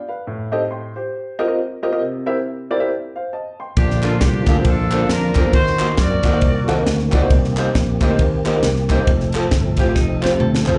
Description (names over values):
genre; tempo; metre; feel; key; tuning
uptempo gospel; 136 BPM; 4/4; swing 60% on 8ths; Bb major; A4 = 440 Hz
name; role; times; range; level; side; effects
warm baby grand piano; accompaniment; 0.0-10.8 s; A2 to C6; -24 LUFS; equal; slapback echo
clear horn section; melody; 3.8-6.8 s; D4 to D5; -25 LUFS; equal; slapback echo
tonewheel organ; sustained chords; 3.8-10.8 s; D3 to A4; -28 LUFS; equal; slow rotary speaker, overdrive, chorus vibrato
fingered electric bass; bass; 3.8-10.8 s; F1 to Gb2; -22 LUFS; equal; none
crisp fusion drum kit; drums; 3.8-10.8 s; kick drum, ride cymbal, snare drum, toms; -21 LUFS; equal; none
group handclap; percussion; 4.0-10.7 s; none; -34 LUFS; equal; slapback echo
clean electric guitar; second line; 10.0-10.8 s; Eb4 to A4; -32 LUFS; equal; tremolo, slapback echo
room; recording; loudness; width
light reverb; live gig heard through the venue's PA, club reverb, nothing above 10.7 kHz; -18 LUFS; mono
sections
0.0-10.8 A section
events
drum fill 10.0-10.8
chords
0.2 Am7b5; 1.1 F9sus4; 2.0 C7; 2.9 N.C.; 3.8 Bbmaj7; 5.5 Ebm6; 7.3 Cm7; 9.1 F